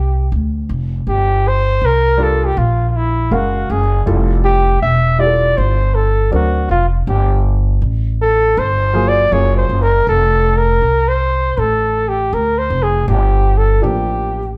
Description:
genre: hip hop, jazz-hop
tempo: 80 BPM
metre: 4/4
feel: swing 64% on 16ths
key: G dorian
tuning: A4 = 439 Hz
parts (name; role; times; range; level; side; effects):
- breathy flugelhorn; melody; 0.0-14.6 s; E4 to E5; -18 LUFS; equal; none
- upright bass; bass; 0.0-14.5 s; E1 to D2; -18 LUFS; equal; none
- dark grand piano; accompaniment; 2.2-14.4 s; F3 to E#5; -23 LUFS; equal; none
room: moderate large studio reverb, RT60 1.0 s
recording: band playing live in one room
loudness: -15 LUFS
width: mono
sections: 0.0-1.1 A section; 1.1-14.6 B section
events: flugelhorn solo 1.1-14.6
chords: 0.0 Csus2; 1.1 Gm7; 3.3 F#maj9; 4.1 Fmaj9; 6.3 D7alt; 7.1 Gm7; 9.3 F#maj9; 10.1 F; 12.3 Fm6; 13.1 Gm7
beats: 0.32 | 1.07 1.82 2.57 3.32 | 4.07 4.82 5.57 6.32 | 7.07 7.82 8.57 9.32 | 10.07 10.82 11.57 12.32 | 13.07 13.82 14.57

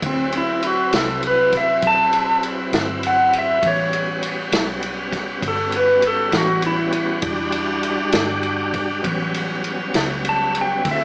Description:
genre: slow blues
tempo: 66 BPM (dotted quarters)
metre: 12/8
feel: straight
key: A mixolydian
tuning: A4 = 444 Hz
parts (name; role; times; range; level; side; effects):
- bright tonewheel organ; sustained chords; 0.0-11.0 s; F#3 to B4; -26 LUFS; equal; slow rotary speaker, overdrive, chorus vibrato
- vintage muted fingered electric bass; bass; 0.0-11.0 s; E1 to D2; -33 LUFS; equal; none
- vintage drum kit; drums; 0.0-11.0 s; kick drum, ride cymbal, snare drum; -27 LUFS; equal; none
- clean lap steel guitar; melody; 0.1-11.0 s; C4 to A5; -21 LUFS; equal; none
room: moderate large studio reverb, RT60 1.0 s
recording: band playing live in one room, small speaker sound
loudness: -20 LUFS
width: mono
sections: 0.0-11.0 A section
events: electric slide guitar solo 0.0-11.0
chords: 0.0 D13; 3.6 A13; 7.2 Em7; 9.0 A13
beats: | 0.02 0.92 1.82 2.72 | 3.62 4.52 5.43 6.33 | 7.23 8.14 9.04 9.95 | 10.86

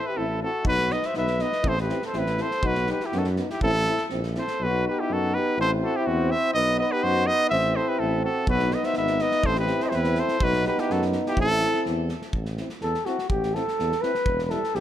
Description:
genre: balkan folk, Balkan brass band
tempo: 124 BPM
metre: 2/4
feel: swing 53% on 16ths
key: A dorian sharp4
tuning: A4 = 440 Hz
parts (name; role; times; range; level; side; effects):
- clear trumpet; melody; 0.0-11.8 s; F#4 to E5; -25 LUFS; right 1 dB; none
- mellow flugelhorn; second line; 0.0-14.8 s; C4 to C5; -30 LUFS; left 2 dB; none
- warm French horn; accompaniment; 0.0-14.6 s; D#4 to E4; -31 LUFS; left 6 dB; none
- clear euphonium; accompaniment; 0.2-14.6 s; G3 to C4; -32 LUFS; right 6 dB; none
- warm tuba; bass; 0.2-14.8 s; E1 to F#2; -29 LUFS; equal; none
- loose indie drum kit; percussion; 0.6-4.5, 8.5-14.8 s; kick drum, snare drum; -32 LUFS; equal; none
room: light reverb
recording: none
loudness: -22 LUFS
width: side -11 dB against mid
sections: 0.0-4.6 A section; 4.6-12.3 A section; 12.3-14.8 B section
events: flugelhorn solo 12.3-14.8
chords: 0.0 Am; 0.7 B; 1.6 Am; 2.6 B; 3.6 Am; 4.6 B; 5.6 Am; 6.5 B; 7.5 Am; 8.5 B; 9.4 Am; 10.4 B; 11.4 Am; 14.3 Em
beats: 0.17 | 0.66 1.16 | 1.65 2.14 | 2.63 3.12 | 3.61 4.10 | 4.59 5.08 | 5.57 6.05 | 6.54 7.03 | 7.51 8.00 | 8.48 8.96 | 9.45 9.93 | 10.41 10.89 | 11.38 11.86 | 12.34 12.82 | 13.31 13.79 | 14.27 14.75

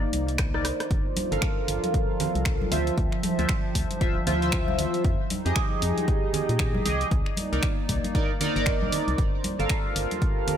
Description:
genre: deep house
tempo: 116 BPM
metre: 4/4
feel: swing 60% on 16ths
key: G minor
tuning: A4 = 439 Hz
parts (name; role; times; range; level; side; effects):
- hollow soft pad; sustained chords; 0.0-10.6 s; F3 to E5; -36 LUFS; equal; chorus, sidechain pumping
- chorused polysynth; stabs; 0.0-10.6 s; Eb4 to F5; -29 LUFS; equal; phaser, vintage 12-bit sampler grit, sidechain pumping, ping-pong delay
- organ-like FM bass; bass; 0.0-10.1 s; D1 to Bb2; -29 LUFS; equal; sidechain pumping
- deep dark ambient pad; texture; 0.0-10.6 s; F3 to C6; -33 LUFS; right 1 dB; chorus, built-in reverb, sidechain pumping
- punchy analog drum machine; drums; 0.1-10.6 s; finger snaps, hi-hat, rim click; -32 LUFS; left 1 dB; none
- electronic kick drum; drums; 0.4-10.3 s; none; -26 LUFS; equal; none
- congas; percussion; 1.2-10.6 s; none; -34 LUFS; right 3 dB; none
room: light reverb, digital ambience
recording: none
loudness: -23 LUFS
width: side -9 dB against mid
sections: 0.0-10.6 A section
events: filter sweep on analog polysynth 0.0-10.6; drum fill 0.4-0.9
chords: 0.0 Cm9; 0.9 Gm9; 2.7 Dm9; 5.0 Fm9; 7.1 Cm9; 9.2 Gm9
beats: 0.39 | 0.91 1.42 1.94 2.46 | 2.98 3.49 4.01 4.53 | 5.04 5.56 6.08 6.60 | 7.11 7.63 8.15 8.67 | 9.18 9.70 10.22

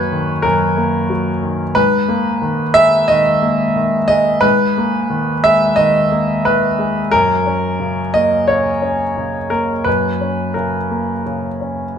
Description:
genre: neoclassical minimalist piano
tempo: 89 BPM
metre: 4/4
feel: rubato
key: G# minor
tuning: A4 = 437 Hz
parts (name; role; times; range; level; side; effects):
- clear grand piano; solo; 0.0-12.0 s; F#2 to E5; -13 LUFS; equal; none
room: wet stone room reverb, RT60 0.9 s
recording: band playing live in one room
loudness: -13 LUFS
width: side -8 dB against mid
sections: 0.0-12.0 A section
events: none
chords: 0.0 D#m/F#; 1.8 G#madd9; 7.1 F#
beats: 0.44 1.10 | 1.76 2.43 3.10 3.76 | 4.43 5.11 5.78 6.46 | 7.13 7.80 8.48 9.16 | 9.86 10.56 11.26 11.97

